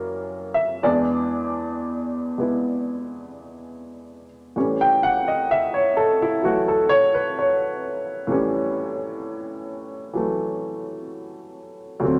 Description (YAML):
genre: solo jazz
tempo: 64 BPM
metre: 4/4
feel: swing 69% on 8ths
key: A mixolydian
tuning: A4 = 440 Hz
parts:
  - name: warm upright piano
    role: solo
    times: 0.0-12.2 s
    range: D2 to G5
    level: -23 LUFS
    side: equal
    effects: none
room: wet club ambience, RT60 0.5 s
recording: none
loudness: -23 LUFS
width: mono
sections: 0.0-4.6 A section; 4.6-12.2 B section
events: upright piano solo 4.6-12.2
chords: 0.0 F#7b9; 0.8 E7; 4.6 A7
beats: | 0.83 1.76 2.70 3.63 | 4.56 5.49 6.42 7.36 | 8.29 9.22 10.15 11.09 | 12.02